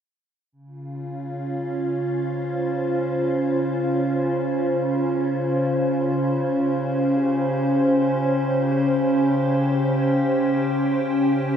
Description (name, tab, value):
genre	ambient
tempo	free time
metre	none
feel	none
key	Db lydian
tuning	A4 = 440 Hz
part	evolving wavetable pad	solo	0.5-11.6 s	Db3 to C5	-20 LUFS	equal	chorus, built-in reverb, diffuse ambient delay
room	wet huge ambient reverb, RT60 8.9 s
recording	dreamy mix soaked in reverb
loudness	-20 LUFS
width	side -8 dB against mid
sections	0.5-11.6 A section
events	none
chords	0.5 Dbmaj7